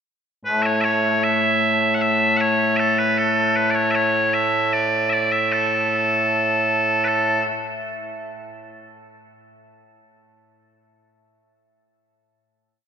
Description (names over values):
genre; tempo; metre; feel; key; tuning
scottish traditional, Scottish pipe music; 77 BPM; 2/4; straight; A major; A4 = 441 Hz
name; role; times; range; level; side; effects
loud bright bagpipes; solo; 0.5-7.4 s; A2 to F#5; -18 LUFS; equal; none
room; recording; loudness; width
wet cathedral reverb, RT60 4.9 s; recorded in a church or concert hall; -17 LUFS; side -7 dB against mid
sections
0.0-0.8 pickup bar; 0.8-7.1 A section; 7.1-8.6 final note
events
none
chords
none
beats
0.06 | 0.84 1.62 | 2.40 3.18 | 3.96 4.73 | 5.51 6.29 | 7.07